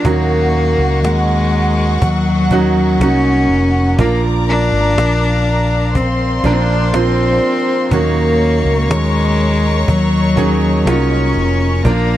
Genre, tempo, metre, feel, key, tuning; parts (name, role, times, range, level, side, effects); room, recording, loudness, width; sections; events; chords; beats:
pop ballad; 61 BPM; 4/4; straight; A4 = 440 Hz
bright cello; melody; 0.0-12.2 s; Gb3 to D4; -17 LUFS; left 3 dB
clear studio violin section; second line; 0.0-12.2 s; Gb4 to Db6; -23 LUFS; right 1 dB; slapback echo
bright grand piano; accompaniment; 0.0-12.2 s; Bb2 to C5; -20 LUFS; right 6 dB
mellow fretless electric bass; bass; 0.0-12.2 s; F1 to Eb2; -16 LUFS; equal
cajon; drums; 0.0-12.1 s; -17 LUFS; equal
dark studio string section; sustained chords; 0.1-12.2 s; Bb4 to D6; -26 LUFS; left 2 dB
little or no reverb; dry, close 1970s-style studio recording; -12 LUFS; side -13 dB against mid
0.0-12.2 A section
0.0 Ebm7; 4.0 Bb; 7.9 Ebm7
| 0.05 1.03 2.02 3.00 | 3.98 4.97 5.95 6.93 | 7.92 8.90 9.88 10.87 | 11.85